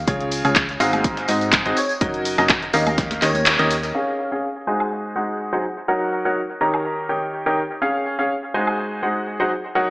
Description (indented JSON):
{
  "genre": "piano house",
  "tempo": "124 BPM",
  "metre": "4/4",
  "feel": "swing 53% on 16ths",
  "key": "Db major",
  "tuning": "A4 = 440 Hz",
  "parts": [
    { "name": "solid FM bass", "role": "bass", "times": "0.0-3.9 s", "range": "Gb1 to Ab2", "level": "-28 LUFS", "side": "equal", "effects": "sidechain pumping" },
    { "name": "bright baby grand piano", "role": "riff", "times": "0.1-9.9 s", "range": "Ab2 to Bb5", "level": "-20 LUFS", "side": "equal", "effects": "sidechain pumping, low-pass filter, tape echo" },
    { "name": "dusty soul sampler-style drum kit", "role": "drums", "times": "0.1-3.8 s", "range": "hi-hat, snare drum", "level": "-33 LUFS", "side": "equal", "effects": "none" },
    { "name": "electronic kick drum", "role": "drums", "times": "0.1-3.1 s", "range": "none", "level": "-22 LUFS", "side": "equal", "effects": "none" },
    { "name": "house drum kit", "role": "drums", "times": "0.1-8.8 s", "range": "handclaps, hi-hat, shaker, woodblock", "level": "-20 LUFS", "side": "equal", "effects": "low-pass filter on hats, low-pass filter on perc, low-pass filter on snare" },
    { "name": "tambourine and congas", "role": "percussion", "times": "0.1-3.9 s", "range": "none", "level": "-33 LUFS", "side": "left 1 dB", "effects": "none" },
    { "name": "airy dreamy lead", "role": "melody", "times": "1.8-3.6 s", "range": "Db5 to Eb5", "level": "-27 LUFS", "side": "equal", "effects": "chorus, tape echo" }
  ],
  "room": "moderate echo chamber reverb, RT60 1.3 s",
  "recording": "echo-heavy mix, small speaker sound",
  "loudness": "-18 LUFS",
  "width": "side -23 dB against mid",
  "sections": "0.0-3.9 A section; 3.9-9.9 B section",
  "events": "kick drops out 3.5-3.9; band accent 3.5; filter sweep on grand piano 3.9-9.9",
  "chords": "0.1 Db; 0.8 Ab7; 1.8 Gb6; 2.7 Eb7; 3.9 Db; 4.7 Ab7; 5.6 Gb6; 6.6 Eb7; 7.8 Db; 8.5 Ab7",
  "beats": "| 0.08 0.56 1.04 1.53 | 2.01 2.50 2.98 3.46 | 3.95 4.43 4.92 5.40 | 5.88 6.37 6.85 7.33 | 7.82 8.30 8.79 9.27 | 9.75"
}